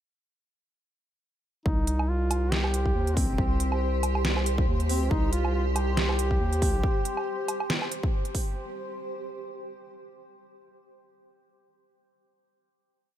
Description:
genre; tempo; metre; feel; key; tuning
deep dubstep; 139 BPM; 4/4; swing 56% on 16ths, half-time; C minor; A4 = 440 Hz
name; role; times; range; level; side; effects
mellow duduk; melody; 1.7-8.1 s; C4 to G4; -33 LUFS; equal; dub echo
granular cloud pad; sustained chords; 2.3-8.5 s; G4 to C6; -34 LUFS; right 1 dB; built-in reverb
saturated sub bass; bass; 1.7-6.8 s; C2 to Eb2; -27 LUFS; equal; none
electronic kick drum; drums; 1.7-8.4 s; none; -27 LUFS; equal; none
dubstep drum kit; drums; 1.9-8.4 s; hi-hat, snare drum, woodblock; -31 LUFS; right 2 dB; none
room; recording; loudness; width
digital ambience; none; -24 LUFS; side -11 dB against mid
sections
1.7-8.6 drop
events
drop 1.7-8.6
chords
1.7 C5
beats
| 1.66 2.09 2.52 2.95 | 3.38 3.82 4.25 4.68 | 5.11 5.54 5.97 6.41 | 6.84 7.27 7.70 8.13

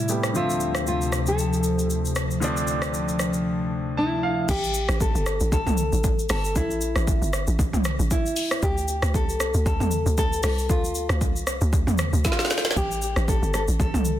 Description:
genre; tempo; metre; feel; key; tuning
amapiano; 116 BPM; 4/4; swing 55% on 16ths; A minor; A4 = 442 Hz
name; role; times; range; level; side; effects
nylon-string guitar; melody; 0.0-14.2 s; E4 to A4; -27 LUFS; left 1 dB; ping-pong delay
clear baby grand piano; accompaniment; 0.0-4.5 s; C3 to A5; -28 LUFS; equal; none
hollow soft pad; sustained chords; 0.0-4.4 s; D2 to G3; -26 LUFS; left 1 dB; chorus, sidechain pumping
deep house drum kit; drums; 0.1-14.2 s; crash cymbal, hi-hat, kick drum, rim click, shaker, snare drum, toms; -25 LUFS; equal; soft clipping on snare
hollow log drum bass; bass; 4.5-14.2 s; G1 to E2; -24 LUFS; equal; none
room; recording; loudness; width
light reverb; dense, heavily limited modern master; -21 LUFS; side -12 dB against mid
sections
0.0-4.5 A section; 4.5-14.2 B section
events
drums muted 3.5-4.5; grand piano fill 3.7-4.5; drop 4.5-14.2; drum fill 12.2-12.8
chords
0.3 Dm7; 4.5 Am7; 8.6 Dm7; 12.8 Am7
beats
| 0.35 0.87 1.39 1.90 | 2.42 2.94 3.45 3.97 | 4.49 5.00 5.52 6.04 | 6.56 7.07 7.59 8.11 | 8.63 9.14 9.66 10.18 | 10.70 11.21 11.73 12.25 | 12.76 13.28 13.80

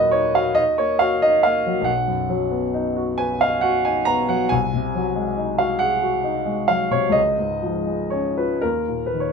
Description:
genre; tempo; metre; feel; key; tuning
classical, romantic nocturne for solo piano; 39-48 BPM (dotted quarters); 6/8; rubato; unclear; A4 = 439 Hz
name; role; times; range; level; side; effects
warm grand piano; solo; 0.0-9.3 s; B1 to A#5; -18 LUFS; equal; none
room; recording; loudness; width
light reverb; minimal, uncompressed stereo recording; -18 LUFS; side -5 dB against mid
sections
0.0-9.3 A section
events
none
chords
0.0 D#m; 1.9 B; 4.5 G#7/B#; 7.2 C#; 8.6 D#5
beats
0.58 | 1.88 3.18 | 4.52 5.82 | 7.16 8.62

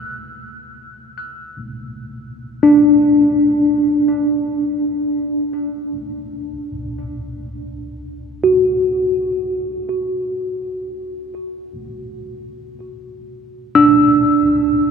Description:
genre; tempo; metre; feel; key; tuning
ambient; free time; none; none; unclear; A4 = 440 Hz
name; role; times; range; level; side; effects
tine electric piano; solo; 0.0-14.9 s; D4 to F#6; -16 LUFS; equal; medium stereo tremolo, tape echo
room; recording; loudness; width
wet huge ambient reverb, RT60 8.6 s; none; -14 LUFS; side -6 dB against mid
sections
0.0-14.9 A section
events
none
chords
0.0 Dadd9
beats
free time

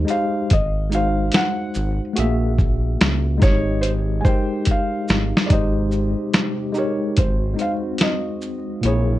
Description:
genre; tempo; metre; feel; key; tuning
lo-fi hip hop; 72 BPM; 4/4; swing 64% on 16ths; Ab major; A4 = 439 Hz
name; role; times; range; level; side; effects
tine electric piano; accompaniment; 0.0-9.2 s; Bb2 to Fb5; -23 LUFS; left 1 dB; overdrive, fast stereo tremolo, low-pass filter
round analog bass; bass; 0.0-9.2 s; Ab1 to Db2; -22 LUFS; equal; none
felt-muted upright piano; melody; 0.1-9.2 s; C5 to Ab5; -26 LUFS; equal; low-pass filter
lo-fi sampler-style drum kit; drums; 0.1-9.1 s; hi-hat, kick drum, shaker, snare drum; -18 LUFS; equal; none
hollow soft pad; sustained chords; 5.5-9.2 s; C3 to Bb4; -31 LUFS; right 1 dB; chorus, low-pass filter
room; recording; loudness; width
light reverb; cassette tape; -18 LUFS; side -15 dB against mid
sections
0.0-5.5 A section; 5.5-9.2 B section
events
break 0.0-5.5; drum fill 4.7-5.5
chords
0.0 Abmaj7; 0.5 Ab7; 2.2 Gb7/Bb; 3.4 Abmaj7; 7.2 Ab7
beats
0.51 1.34 | 2.17 3.00 3.84 4.67 | 5.50 6.34 7.17 8.01 | 8.84

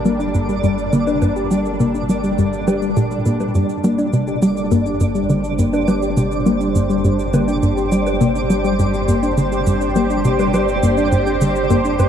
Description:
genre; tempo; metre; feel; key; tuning
ambient, sequencer-driven space music; 103 BPM; 4/4; straight; G minor; A4 = 440 Hz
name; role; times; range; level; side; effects
lush unison pad; sustained chords; 0.0-12.1 s; G3 to C5; -22 LUFS; equal; chorus, phaser
warm sub bass; bass; 0.0-12.1 s; G1; -28 LUFS; right 1 dB; none
twinkling granular texture; texture; 0.0-12.1 s; D5; -26 LUFS; right 3 dB; built-in reverb
thumb-piano-like synth pluck; arpeggios; 0.1-12.0 s; G3 to G4; -20 LUFS; left 3 dB; chorus, auto-pan, tape echo
tight sequencer bass; riff; 0.1-12.1 s; G2 to G3; -19 LUFS; right 1 dB; tape echo
shaker and bongos; percussion; 0.1-12.1 s; none; -30 LUFS; right 3 dB; overdrive, tape echo
room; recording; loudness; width
moderate huge ambient reverb, RT60 7.9 s; dark, warm production; -15 LUFS; side -9 dB against mid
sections
0.0-12.1 A section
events
filter sweep on analog synth bass 0.0-12.1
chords
0.0 Gm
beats
0.05 0.64 | 1.22 1.80 2.38 2.97 | 3.55 4.13 4.71 5.30 | 5.88 6.46 7.04 7.63 | 8.21 8.79 9.37 9.96 | 10.54 11.12 11.70

